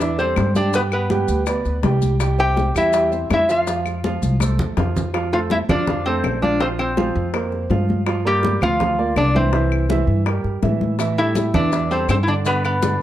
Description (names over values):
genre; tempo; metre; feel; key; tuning
latin, salsa; 164 BPM; 4/4; straight; F major; A4 = 440 Hz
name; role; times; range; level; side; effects
metal-body resonator slide guitar; melody; 0.0-13.0 s; G3 to G5; -20 LUFS; left 1 dB; none
clear baby grand piano; accompaniment; 0.0-13.0 s; D3 to G5; -24 LUFS; right 5 dB; none
upright bass; bass; 0.0-12.9 s; Bb1 to A2; -22 LUFS; equal; none
bongos; percussion; 0.0-13.0 s; none; -29 LUFS; left 6 dB; none
maracas; percussion; 0.0-5.1, 11.0-13.0 s; none; -36 LUFS; left 7 dB; none
congas; percussion; 0.2-13.0 s; none; -25 LUFS; left 1 dB; none
claves; percussion; 0.4-12.8 s; none; -34 LUFS; left 7 dB; none
room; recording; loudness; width
light reverb; dark, warm production; -17 LUFS; side -12 dB against mid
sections
0.0-5.1 A section; 5.1-13.0 A section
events
drum fill 4.2-5.1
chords
0.0 Am7; 0.7 G; 2.2 C; 3.7 F; 6.6 Bbsus2; 8.1 Gm7; 9.5 C7; 11.0 Am7; 12.5 G